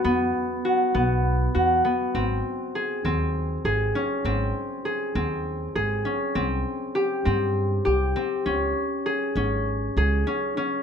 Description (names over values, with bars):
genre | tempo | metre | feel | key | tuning
contemporary instrumental, chamber music in an uneven meter | 200 BPM (eighths) | 7/8 | straight | unclear | A4 = 441 Hz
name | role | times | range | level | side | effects
concert harp | arpeggios | 0.0-10.8 s | B3 to G#4 | -24 LUFS | left 1 dB | none
upright bass | bass | 0.1-10.2 s | G#1 to G2 | -26 LUFS | right 1 dB | none
room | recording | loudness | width
little or no reverb | close, detailed microphones | -22 LUFS | side -7 dB against mid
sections
0.0-10.6 A section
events
none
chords
0.0 Esus2; 2.1 G#; 6.4 C5; 8.5 C#5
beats
| 0.05 0.35 0.65 0.95 1.25 1.55 1.85 | 2.15 2.45 2.75 3.05 3.35 3.65 3.95 | 4.25 4.55 4.85 5.15 5.45 5.75 6.05 | 6.35 6.66 6.96 7.26 7.56 7.86 8.16 | 8.46 8.76 9.06 9.36 9.66 9.96 10.27 | 10.57